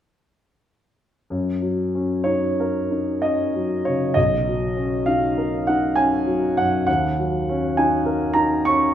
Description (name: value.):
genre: classical, impressionist solo piano.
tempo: 62-68 BPM.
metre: 3/4.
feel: rubato.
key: F# major.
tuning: A4 = 438 Hz.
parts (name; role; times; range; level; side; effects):
warm concert grand piano; solo; 1.3-8.9 s; B1 to C#6; -19 LUFS; equal; none.
room: wet recital hall reverb, RT60 1.5 s.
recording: none.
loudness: -19 LUFS.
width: side -10 dB against mid.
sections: 1.3-8.9 A section.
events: none.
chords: 1.3 F#6; 4.2 Bmaj9; 6.9 D#m7.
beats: | 1.30 2.26 3.23 | 4.17 5.08 5.98 | 6.88 7.77 8.67.